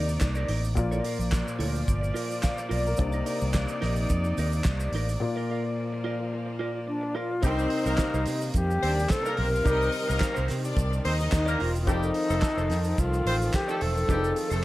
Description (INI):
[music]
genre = disco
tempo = 108 BPM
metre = 4/4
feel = straight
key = C dorian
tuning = A4 = 440 Hz
[part]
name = clean electric guitar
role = accompaniment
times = 0.0-14.6 s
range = Eb4 to F5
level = -37 LUFS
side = right 5 dB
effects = none
[part]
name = warm concert grand piano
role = accompaniment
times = 0.0-14.6 s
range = Bb2 to F5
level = -34 LUFS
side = left 3 dB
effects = none
[part]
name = rich chamber string section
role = sustained chords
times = 0.0-14.6 s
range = C3 to D5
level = -34 LUFS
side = equal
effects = none
[part]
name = fingered electric bass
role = bass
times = 0.0-14.6 s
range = E1 to C3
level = -28 LUFS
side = equal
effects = none
[part]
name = tube shaker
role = percussion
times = 0.1-14.6 s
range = none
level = -46 LUFS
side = right 4 dB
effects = none
[part]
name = damped 70s drum kit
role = drums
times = 0.2-14.5 s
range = handclaps, hi-hat, kick drum, snare drum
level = -30 LUFS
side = equal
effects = none
[part]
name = bright alto flute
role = melody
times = 6.9-14.6 s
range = D4 to Bb4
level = -29 LUFS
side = left 1 dB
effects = none
[part]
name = clear studio string section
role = second line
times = 7.4-11.6 s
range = Bb3 to F5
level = -33 LUFS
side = left 1 dB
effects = none
[part]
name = bright horn section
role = stabs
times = 7.4-14.6 s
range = G3 to C5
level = -33 LUFS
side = equal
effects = none
[sound]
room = small room ambience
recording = none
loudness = -24 LUFS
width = side -16 dB against mid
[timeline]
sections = 0.0-7.4 A section; 7.4-14.6 B section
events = break 5.2-7.4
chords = 0.0 Cm9; 0.8 Bb; 3.0 Cm9; 5.2 Bb; 7.4 Cm7; 11.9 F7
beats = 0.22 | 0.77 1.33 1.88 2.44 | 2.99 3.55 4.10 4.66 | 5.21 5.77 6.32 6.88 | 7.43 7.99 8.54 9.10 | 9.65 10.21 10.76 11.32 | 11.87 12.43 12.98 13.54 | 14.09